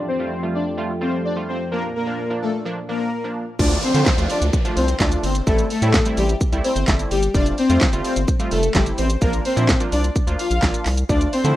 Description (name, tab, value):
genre	dance-pop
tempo	128 BPM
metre	4/4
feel	straight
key	D minor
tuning	A4 = 440 Hz
part	funky polysynth comp	accompaniment	0.0-11.6 s	F3 to F4	-27 LUFS	right 2 dB	chorus, sidechain pumping, low-pass filter
part	lush unison pad	sustained chords	0.0-3.6, 11.1-11.6 s	F2 to A4	-29 LUFS	right 1 dB	chorus, sidechain pumping, low-pass filter
part	soft supersaw	melody	0.1-11.6 s	G3 to F5	-22 LUFS	left 2 dB	sidechain pumping, low-pass filter, tape echo
part	round analog bass	bass	3.6-11.5 s	F1 to D3	-21 LUFS	equal	sidechain pumping
part	pop drum kit	drums	3.6-11.6 s	crash cymbal, handclaps, hi-hat, kick drum, shaker, snare drum	-20 LUFS	equal	none
part	downlifter	sound effects	3.6-7.3 s	none	-29 LUFS	right 1 dB	none
room	little or no reverb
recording	rough home demo mix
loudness	-17 LUFS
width	side -14 dB against mid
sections	0.0-3.6 A section; 3.6-11.6 B section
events	drop 3.6-11.6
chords	0.0 Fadd9; 1.7 Bb; 3.6 Dm; 5.5 Am7; 7.3 Fadd9; 9.2 Bb